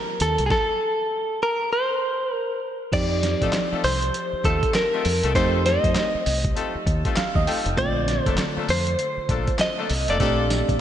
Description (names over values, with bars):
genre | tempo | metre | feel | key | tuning
R&B, new jack swing | 99 BPM | 4/4 | swing 61% on 16ths | unclear | A4 = 440 Hz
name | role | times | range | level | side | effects
direct-recorded clean electric guitar | melody | 0.0-10.8 s | Ab4 to Eb5 | -24 LUFS | equal | slapback echo
FM electric piano | accompaniment | 0.0-10.8 s | D3 to G5 | -29 LUFS | right 4 dB | chorus, slapback echo
deep dub fingered electric bass | bass | 0.2-10.8 s | F1 to F2 | -25 LUFS | equal | none
boom bap sampler-style drum kit | drums | 0.2-10.8 s | crash cymbal, handclaps, hi-hat, kick drum, snare drum, tambourine | -26 LUFS | equal | none
clear horn section | stabs | 3.4-10.5 s | A3 to A4 | -30 LUFS | left 5 dB | slapback echo
room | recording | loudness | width
moderate lush hall reverb, RT60 2.8 s | big arena sound, nothing above 10.3 kHz | -20 LUFS | side -10 dB against mid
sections
0.0-2.9 A section; 2.9-10.8 B section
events
FM electric piano fill 6.9-7.8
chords
0.0 Eb6; 0.5 N.C.; 2.9 F7; 7.8 Bbmaj7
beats
| 0.50 1.11 1.72 2.32 | 2.93 3.53 4.14 4.75 | 5.35 5.96 6.56 7.17 | 7.78 8.38 8.99 9.59 | 10.20 10.81